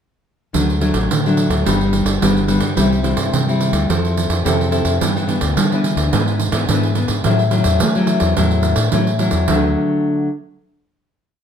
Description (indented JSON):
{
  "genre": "samba and choro",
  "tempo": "107 BPM",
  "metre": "4/4",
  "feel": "straight",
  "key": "D major",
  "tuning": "A4 = 440 Hz",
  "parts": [
    { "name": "nylon-string guitar", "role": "accompaniment", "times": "0.5-10.3 s", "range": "G2 to A4", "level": "-18 LUFS", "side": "left 2 dB", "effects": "none" },
    { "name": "deep dub fingered electric bass", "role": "bass", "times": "0.5-9.7 s", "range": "G1 to A3", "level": "-19 LUFS", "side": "equal", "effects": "none" },
    { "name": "pandeiro", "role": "percussion", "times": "0.5-9.6 s", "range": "none", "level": "-20 LUFS", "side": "right 7 dB", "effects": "none" }
  ],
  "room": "light reverb",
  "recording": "none",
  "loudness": "-14 LUFS",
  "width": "side -8 dB against mid",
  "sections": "0.5-9.5 groove; 9.5-11.4 final chord",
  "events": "none",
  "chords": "0.5 D; 1.7 G; 2.8 C; 3.9 Fmaj7; 5.0 G6; 6.1 E7/G#; 7.3 A6; 9.5 D"
}